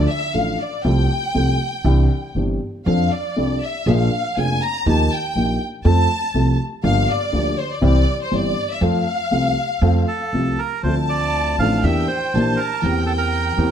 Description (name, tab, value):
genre	tango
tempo	120 BPM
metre	4/4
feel	rubato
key	F major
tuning	A4 = 440 Hz
part	rich studio violin section	second line	0.0-13.7 s	C5 to Bb5	-23 LUFS	left 2 dB	none
part	dark upright piano	accompaniment	0.0-13.7 s	F1 to A4	-21 LUFS	left 1 dB	none
part	upright bass	bass	0.0-13.7 s	F1 to F2	-20 LUFS	right 1 dB	none
part	bandoneon	melody	10.1-13.7 s	A4 to F5	-23 LUFS	right 4 dB	none
room	light reverb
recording	close, detailed microphones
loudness	-17 LUFS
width	side -9 dB against mid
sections	0.0-10.8 A section; 10.8-13.7 B section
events	violin section solo 0.0-10.8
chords	0.0 Dm; 0.8 F/C; 1.8 Cadd9; 2.9 F6; 3.9 Bb7; 4.9 Ebadd9; 5.9 F; 6.8 Gm7; 7.8 C; 8.8 F; 10.8 Dm7; 11.8 Em7b5; 12.8 C7/E